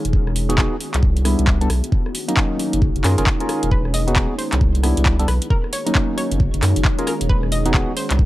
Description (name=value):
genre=UK garage, two-step garage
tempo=134 BPM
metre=4/4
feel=swing 62% on 16ths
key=E lydian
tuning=A4 = 442 Hz
part: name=ethereal airy pad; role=sustained chords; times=0.0-8.3 s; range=A#3 to G#4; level=-32 LUFS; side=equal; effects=none
part: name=saturated sub bass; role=bass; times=0.0-8.3 s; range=E1 to F#2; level=-19 LUFS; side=equal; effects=tube saturation
part: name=garage drum kit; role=drums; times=0.0-8.2 s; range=handclaps, hi-hat, rim click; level=-24 LUFS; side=equal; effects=none
part: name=deep dark ambient pad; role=texture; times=0.0-8.3 s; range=D#4 to F#5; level=-29 LUFS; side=right 1 dB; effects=chorus, built-in reverb, sidechain pumping
part: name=electronic kick drum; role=drums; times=0.1-8.3 s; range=none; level=-18 LUFS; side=equal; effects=none
part: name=percussive organ stab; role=stabs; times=0.5-7.9 s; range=F#3 to A#4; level=-24 LUFS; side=equal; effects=chorus, cassette tape, analog delay
part: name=hollow square pluck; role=melody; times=3.7-8.1 s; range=A#4 to D#5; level=-29 LUFS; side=equal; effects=chorus, analog delay
room=digital ambience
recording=dry, gritty hardware recording, cassette tape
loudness=-16 LUFS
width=side -16 dB against mid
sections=0.0-8.3 A section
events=none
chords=0.1 Emaj9; 1.0 Cmaj9; 1.7 Bmaj9 (rootless); 2.8 F#maj9; 3.7 Emaj9; 4.6 Cmaj9; 5.3 Bmaj9; 6.4 F#maj9; 7.3 Emaj9